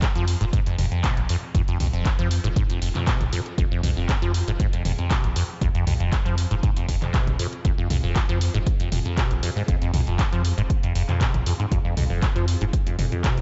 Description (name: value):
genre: acid house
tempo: 118 BPM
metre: 4/4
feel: straight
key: F minor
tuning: A4 = 439 Hz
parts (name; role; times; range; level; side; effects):
- liquid acid bass; riff; 0.0-13.4 s; F2 to F3; -28 LUFS; equal; phaser, tube saturation, subtle chorus, cassette tape, sidechain pumping, tape echo
- electronic kick drum; drums; 0.0-13.3 s; none; -26 LUFS; equal; none
- punchy analog drum machine; drums; 0.0-13.4 s; handclaps, hi-hat, toms; -32 LUFS; equal; none
- ethereal airy pad; texture; 0.4-13.4 s; C4 to Ab5; -46 LUFS; equal; none
- saturated sub bass; bass; 0.2-13.4 s; Eb1 to F2; -28 LUFS; equal; sidechain pumping
room: light reverb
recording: nothing above 7.8 kHz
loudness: -23 LUFS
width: mono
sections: 0.0-13.4 A section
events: none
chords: 0.0 Fm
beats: 0.02 0.53 1.04 | 1.55 2.06 2.56 3.07 | 3.58 4.09 4.60 5.11 | 5.62 6.12 6.63 7.14 | 7.65 8.16 8.67 9.17 | 9.68 10.19 10.70 11.21 | 11.72 12.22 12.73 13.24